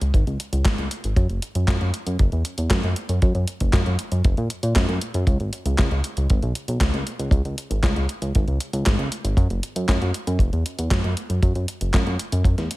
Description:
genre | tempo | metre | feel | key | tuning
italo disco | 117 BPM | 4/4 | straight | C# dorian | A4 = 435 Hz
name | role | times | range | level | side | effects
chorused synth bass | bass | 0.0-12.7 s | F#1 to A#2 | -23 LUFS | equal | tube saturation
gated 80s digital drum machine | drums | 0.0-12.8 s | handclaps, hi-hat, snare drum | -27 LUFS | equal | gated reverb, gated reverb snare
kick drum | drums | 0.1-12.6 s | none | -20 LUFS | equal | none
room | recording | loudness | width
little or no reverb | none | -20 LUFS | side -19 dB against mid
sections
0.0-12.8 A section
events
none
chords
none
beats
0.14 0.66 | 1.17 1.68 2.19 2.71 | 3.22 3.73 4.25 4.76 | 5.27 5.79 6.30 6.81 | 7.32 7.84 8.35 8.86 | 9.38 9.89 10.40 10.91 | 11.43 11.94 12.45

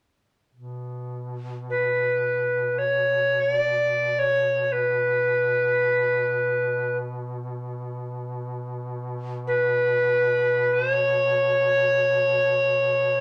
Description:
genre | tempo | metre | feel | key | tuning
caucasian folk, Caucasian lament | free time | none | none | B minor | A4 = 439 Hz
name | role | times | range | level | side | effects
mellow duduk | drone | 0.5-13.2 s | B2 | -35 LUFS | equal | none
bright reedy alto recorder | melody | 1.7-13.2 s | B4 to D5 | -22 LUFS | equal | none
room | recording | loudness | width
wet studio reverb, RT60 0.8 s | none | -23 LUFS | mono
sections
0.5-13.2 A section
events
none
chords
none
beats
free time

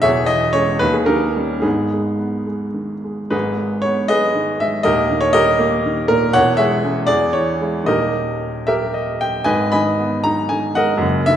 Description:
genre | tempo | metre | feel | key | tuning
classical, romantic character piece for solo piano | 69-82 BPM (dotted quarters) | 6/8 | rubato | G# minor | A4 = 440 Hz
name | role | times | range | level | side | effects
warm baby grand piano | solo | 0.0-11.4 s | D#1 to B5 | -15 LUFS | equal | none
room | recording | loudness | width
wet recital hall reverb, RT60 1.7 s | none | -15 LUFS | side -10 dB against mid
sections
0.0-3.3 A section; 3.3-11.4 B section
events
none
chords
0.0 C#m/E; 0.8 D#7; 1.6 G#m; 4.9 D#; 6.3 C#m/E; 7.1 E6; 7.9 D#; 9.5 G#m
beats
| 0.05 0.82 | 1.65 2.49 | 3.33 4.11 | 4.87 5.61 | 6.35 7.09 | 7.87 8.68 | 9.49 10.27 | 11.04

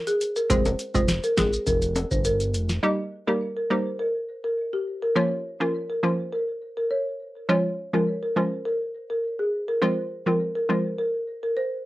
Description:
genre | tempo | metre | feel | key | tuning
dancehall | 103 BPM | 4/4 | straight | F minor | A4 = 438 Hz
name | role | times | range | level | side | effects
folk marimba with medium mallets | melody | 0.1-11.9 s | G4 to Eb5 | -26 LUFS | equal | cassette tape
booming analog drum machine | drums | 0.1-2.8 s | hi-hat, kick drum, snare drum | -26 LUFS | equal | cassette tape
maracas and timbales | percussion | 0.1-2.8 s | none | -32 LUFS | left 2 dB | none
hollow square pluck | accompaniment | 0.5-10.8 s | F3 to Ab4 | -25 LUFS | equal | chorus, sidechain pumping, cassette tape
fat analog bass | bass | 0.5-2.8 s | F1 to G1 | -27 LUFS | equal | none
room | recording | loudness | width
moderate small room reverb, RT60 0.5 s | home recording on cassette | -23 LUFS | side -17 dB against mid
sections
0.0-2.8 A section; 2.8-11.9 B section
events
none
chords
0.0 N.C.; 0.5 Fm; 2.8 Eb; 5.2 Bbm; 7.5 Db; 9.8 Fm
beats
| 0.50 1.08 1.67 2.25 | 2.83 3.41 4.00 4.58 | 5.16 5.74 6.33 6.91 | 7.49 8.07 8.66 9.24 | 9.82 10.40 10.99 11.57

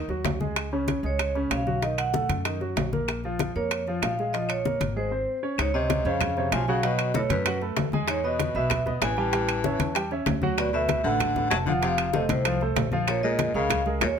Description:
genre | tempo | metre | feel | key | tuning
Afro-Cuban jazz | 192 BPM | 4/4 | straight | Bb minor | A4 = 440 Hz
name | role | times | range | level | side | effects
warm baby grand piano | accompaniment | 0.0-14.1 s | C3 to Ab5 | -30 LUFS | right 2 dB | none
upright bass | bass | 0.0-14.2 s | F1 to F#2 | -31 LUFS | equal | none
bongos | percussion | 0.1-14.2 s | none | -34 LUFS | left 9 dB | none
congas | percussion | 0.1-14.2 s | none | -31 LUFS | left 4 dB | none
timbales | percussion | 0.3-14.2 s | none | -31 LUFS | right 9 dB | none
claves | percussion | 0.6-14.2 s | none | -36 LUFS | left 5 dB | none
vibraphone with medium mallets | melody | 1.1-14.1 s | Cb5 to A5 | -28 LUFS | right 1 dB | plate reverb
breathy baritone saxophone | second line | 5.6-14.1 s | Gb2 to F#3 | -31 LUFS | left 7 dB | none
room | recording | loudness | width
light reverb | none | -23 LUFS | side -7 dB against mid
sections
0.0-5.6 A section; 5.6-14.2 B section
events
none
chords
0.0 Ab5; 0.6 Db; 1.8 B7; 3.1 Bbm7; 5.0 Ab; 5.6 Dbmaj9; 6.8 Cb7; 8.1 Emaj7; 9.3 A7; 10.6 D6; 11.8 F; 13.1 Bbm7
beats
0.25 | 0.56 0.88 1.19 1.51 | 1.82 2.14 2.45 2.77 | 3.08 3.39 3.71 4.02 | 4.33 4.65 4.96 5.27 | 5.59 5.90 6.21 6.52 | 6.84 7.15 7.46 7.77 | 8.08 8.39 8.71 9.02 | 9.33 9.64 9.95 10.27 | 10.58 10.89 11.20 11.51 | 11.83 12.14 12.45 12.76 | 13.08 13.39 13.70 14.01

